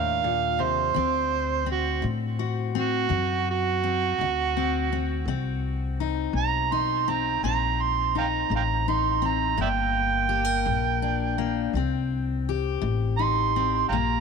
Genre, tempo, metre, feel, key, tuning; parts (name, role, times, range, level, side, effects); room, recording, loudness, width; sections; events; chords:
acoustic country blues, solo or duo; 56 BPM (dotted quarters); 12/8; straight; A4 = 441 Hz
overdriven harmonica; melody; 0.0-14.2 s; F#4 to C6; -25 LUFS; right 10 dB; tape echo
fingerpicked steel-string acoustic guitar; accompaniment; 0.0-14.2 s; G2 to Bb4; -29 LUFS; left 15 dB
upright bass; bass; 0.0-14.2 s; G1 to A2; -28 LUFS; left 2 dB
light reverb; 1960s-style stereo with parts hard left and right; -23 LUFS; side -5 dB against mid
0.0-14.2 A section
harmonica solo 0.0-14.2
0.0 Gm (rootless); 1.0 D7; 5.3 Cm; 9.6 Gm; 11.8 Cm